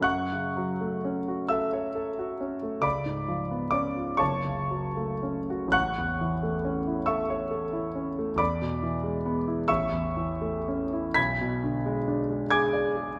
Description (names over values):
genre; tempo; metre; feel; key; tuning
classical, romantic nocturne for solo piano; 37-48 BPM (dotted quarters); 6/8; rubato; F# minor; A4 = 438 Hz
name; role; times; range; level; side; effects
warm concert grand piano; solo; 0.0-13.2 s; F#1 to B6; -28 LUFS; equal; none
room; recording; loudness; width
wet scoring stage reverb, RT60 1.7 s; none; -28 LUFS; mono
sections
0.0-13.2 A section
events
none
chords
0.0 F#m; 2.8 C#7b9; 4.2 F#m; 5.7 A; 8.4 E7; 9.7 A; 11.2 G#dim/B